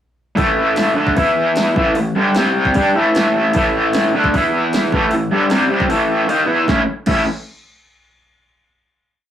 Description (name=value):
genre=garage rock duo or trio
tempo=152 BPM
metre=4/4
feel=straight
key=unclear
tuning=A4 = 440 Hz
part: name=raw garage guitar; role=riff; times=0.4-7.2 s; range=G2 to G4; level=-14 LUFS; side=equal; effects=overdrive, harmonic tremolo
part: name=punchy analog drum machine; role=drums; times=0.4-7.2 s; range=crash cymbal, hi-hat, kick drum, snare drum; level=-21 LUFS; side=equal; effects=overdrive
room=moderate small room ambience, RT60 0.5 s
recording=rough rehearsal-room recording, warm saturation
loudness=-13 LUFS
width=side -10 dB against mid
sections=0.4-6.7 riff; 6.7-8.3 final chord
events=kick and snare drop out 5.9-6.7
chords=0.4 A5; 1.2 E5; 1.8 A5; 2.4 C5; 2.8 A5; 4.3 E5; 4.9 A5; 6.7 A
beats=| 0.39 0.78 1.18 1.57 | 1.97 2.37 2.76 3.15 | 3.55 3.94 4.33 4.73 | 5.12 5.52 5.91 6.30 | 6.70 7.09